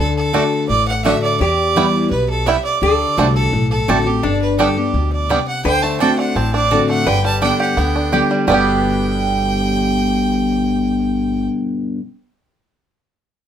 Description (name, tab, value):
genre	bluegrass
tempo	170 BPM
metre	4/4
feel	straight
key	G major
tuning	A4 = 439 Hz
part	clear fiddle	melody	0.0-11.5 s	G4 to A5	-20 LUFS	right 3 dB	plate reverb
part	lap resonator guitar	second line	0.0-11.5 s	D4 to C5	-23 LUFS	left 4 dB	none
part	picked steel-string acoustic guitar	accompaniment	0.0-12.0 s	E2 to G4	-19 LUFS	left 2 dB	none
part	upright bass	bass	0.0-11.5 s	G1 to E2	-22 LUFS	equal	none
part	bluegrass banjo	arpeggios	0.3-11.5 s	D3 to G4	-20 LUFS	right 3 dB	none
part	mandolin	stabs	0.3-12.0 s	A3 to A5	-22 LUFS	right 7 dB	none
room	moderate studio ambience, RT60 0.4 s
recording	none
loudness	-14 LUFS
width	side -9 dB against mid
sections	0.0-5.7 A section; 5.7-8.5 B section; 8.5-11.3 C section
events	none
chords	0.0 D; 1.4 Em; 2.8 D7; 4.2 G; 5.7 D7; 7.1 G